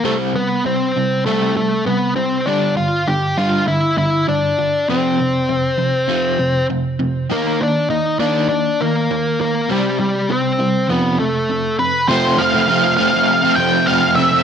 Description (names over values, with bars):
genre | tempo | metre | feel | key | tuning
rock | 100 BPM | 4/4 | straight | unclear | A4 = 439 Hz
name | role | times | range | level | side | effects
octave-fuzz lead guitar | melody | 0.0-14.4 s | G3 to G5 | -17 LUFS | left 1 dB | distortion
crunchy overdriven guitar | riff | 0.0-14.4 s | F2 to Eb4 | -18 LUFS | right 1 dB | tremolo
room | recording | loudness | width
moderate echo chamber reverb, RT60 1.2 s | none | -14 LUFS | side -8 dB against mid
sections
0.0-12.1 A section; 12.1-14.4 B section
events
none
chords
0.1 C5; 2.5 G5; 4.9 F5; 7.3 Eb5; 9.7 C5; 10.9 F